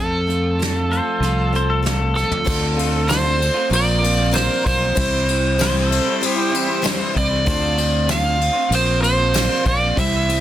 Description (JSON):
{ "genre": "folk rock and heartland rock", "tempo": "96 BPM", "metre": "4/4", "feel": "straight", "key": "D minor", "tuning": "A4 = 444 Hz", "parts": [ { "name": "overdriven slide guitar", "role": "melody", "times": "0.0-10.4 s", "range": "A4 to F5", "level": "-21 LUFS", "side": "right 2 dB", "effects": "digital delay" }, { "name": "picked twelve-string acoustic guitar", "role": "accompaniment", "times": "0.0-10.4 s", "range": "C3 to C5", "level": "-28 LUFS", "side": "left 4 dB", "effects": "none" }, { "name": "electric guitar through a small old amp", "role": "riff", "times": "0.0-10.4 s", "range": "F2 to F4", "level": "-25 LUFS", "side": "right 2 dB", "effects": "wide subtle chorus" }, { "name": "fingered electric bass", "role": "bass", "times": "0.0-10.4 s", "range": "Bb1 to F2", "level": "-21 LUFS", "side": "equal", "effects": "none" }, { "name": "soft brush drum kit", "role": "drums", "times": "0.3-10.4 s", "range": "crash cymbal, hi-hat, kick drum, ride cymbal, snare drum, toms", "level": "-23 LUFS", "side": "left 1 dB", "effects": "none" }, { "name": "pedal steel guitar", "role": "second line", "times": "0.9-6.8 s", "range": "G4 to C5", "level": "-25 LUFS", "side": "left 3 dB", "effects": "none" }, { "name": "dark grand piano", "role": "accompaniment", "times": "2.5-10.4 s", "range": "D4 to D5", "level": "-33 LUFS", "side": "left 3 dB", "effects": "none" }, { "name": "tambourine", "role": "percussion", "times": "3.1-9.5 s", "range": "none", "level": "-31 LUFS", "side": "left 10 dB", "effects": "none" } ], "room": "light reverb", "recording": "dense, heavily limited modern master", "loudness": "-16 LUFS", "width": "side -12 dB against mid", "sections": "0.0-2.5 A section; 2.5-10.4 B section", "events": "drum fill 2.2-2.5", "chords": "0.0 F; 2.5 Dm7; 3.7 Bbsus2; 5.0 C; 7.5 Dm7; 8.7 Bbsus2" }